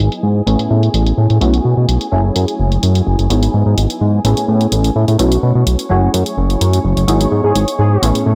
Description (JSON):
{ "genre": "filtered disco house", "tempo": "127 BPM", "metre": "4/4", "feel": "straight", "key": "E major", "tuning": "A4 = 439 Hz", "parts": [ { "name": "funky polysynth comp", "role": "accompaniment", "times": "0.0-8.3 s", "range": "F#3 to G#4", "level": "-21 LUFS", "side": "equal", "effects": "chorus, phaser, cassette tape, low-pass filter" }, { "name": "clear studio violin section", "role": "sustained chords", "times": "0.0-8.3 s", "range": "G#4 to C#6", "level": "-29 LUFS", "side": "equal", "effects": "low-pass filter" }, { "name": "fat analog bass", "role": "bass", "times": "0.0-8.3 s", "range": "F#1 to B2", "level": "-15 LUFS", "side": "equal", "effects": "tube saturation, low-pass filter" }, { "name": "electronic hi-hat", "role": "drums", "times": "0.0-8.2 s", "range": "none", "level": "-26 LUFS", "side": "equal", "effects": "low-pass filter on hats, studio reverb, low-pass filter on snare" }, { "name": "mellow horn section", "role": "melody", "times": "5.9-8.1 s", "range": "F#4 to G#4", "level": "-24 LUFS", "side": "equal", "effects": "low-pass filter, tape echo" } ], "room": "light reverb, digital ambience", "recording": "none", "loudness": "-14 LUFS", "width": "mono", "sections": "0.0-8.3 A section", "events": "filter sweep 0.0-8.3", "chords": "0.5 Amaj7; 1.4 B9sus4; 2.1 F#m9; 3.3 Emaj9/G#; 4.2 Amaj7; 5.2 B9sus4; 5.9 F#m9; 7.1 Emaj9/G#" }